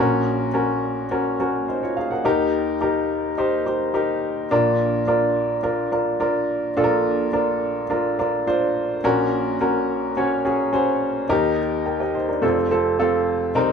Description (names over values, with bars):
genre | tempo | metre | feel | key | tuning
pop | 106 BPM | 4/4 | straight | Bb major | A4 = 440 Hz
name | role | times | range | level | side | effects
clear upright piano | solo | 0.0-13.7 s | F1 to A5 | -19 LUFS | equal | none
room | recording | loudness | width
moderate studio reverb, RT60 0.7 s | band playing live in one room | -19 LUFS | side -6 dB against mid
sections
0.0-13.6 A section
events
upright piano fill 12.4-13.6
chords
0.0 Gb/Bb; 2.2 Eb; 4.5 Bb; 9.0 Gb/Bb; 11.3 Eb; 12.4 F